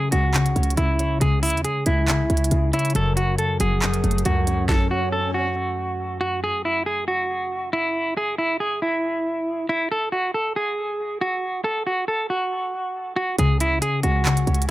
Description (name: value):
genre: hip hop, trap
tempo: 138 BPM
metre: 4/4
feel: half-time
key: C# minor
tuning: A4 = 440 Hz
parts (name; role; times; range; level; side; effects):
- semi-hollow electric guitar; melody; 0.0-14.6 s; E4 to A4; -23 LUFS; right 1 dB; harmonic tremolo, dub echo
- concert harp; accompaniment; 0.0-7.4, 13.4-14.7 s; F#2 to C#5; -24 LUFS; left 2 dB; none
- short 808-style bass; bass; 0.1-4.7, 13.4-14.7 s; F#1 to E2; -22 LUFS; equal; none
- trap drum kit; drums; 0.1-4.8, 13.4-14.7 s; handclaps, hi-hat, kick drum, snare drum; -25 LUFS; right 1 dB; none
- swell; sound effects; 4.0-5.6 s; none; -34 LUFS; right 1 dB; none
room: digital ambience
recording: echo-heavy mix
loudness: -20 LUFS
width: side -16 dB against mid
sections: 0.0-6.4 A section; 6.4-14.7 B section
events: swell 4.0-6.4; stop 4.7-6.4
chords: 0.0 C#m; 3.0 F#m; 6.4 N.C.; 13.4 C#5